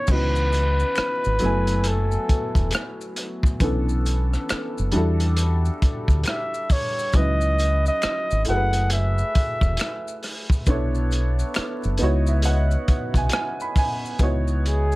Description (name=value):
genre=R&B, neo-soul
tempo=68 BPM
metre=4/4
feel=swing 62% on 16ths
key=C# minor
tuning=A4 = 441 Hz
part: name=warm flugelhorn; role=melody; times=0.0-15.0 s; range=G#4 to F#5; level=-25 LUFS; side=equal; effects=none
part: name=warm upright piano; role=accompaniment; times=0.0-15.0 s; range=E3 to B5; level=-27 LUFS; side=equal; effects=plate reverb
part: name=deep dub fingered electric bass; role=bass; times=0.1-14.9 s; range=E1 to E2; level=-21 LUFS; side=equal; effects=none
part: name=crunchy breakbeat drum kit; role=drums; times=0.1-14.9 s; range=crash cymbal, hi-hat, kick drum, rim click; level=-23 LUFS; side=equal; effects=none
part: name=maracas and finger snaps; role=percussion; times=0.1-15.0 s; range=none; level=-38 LUFS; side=left 4 dB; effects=none
room=little or no reverb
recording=vinyl crackle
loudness=-19 LUFS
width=side -20 dB against mid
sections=0.1-14.2 A section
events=upright piano fill 11.6-14.2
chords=0.1 C#m11; 1.4 F#m11; 3.6 Bm11; 4.9 Em11; 7.1 C#m11; 8.5 F#m11; 10.7 Bm11; 12.0 C#m11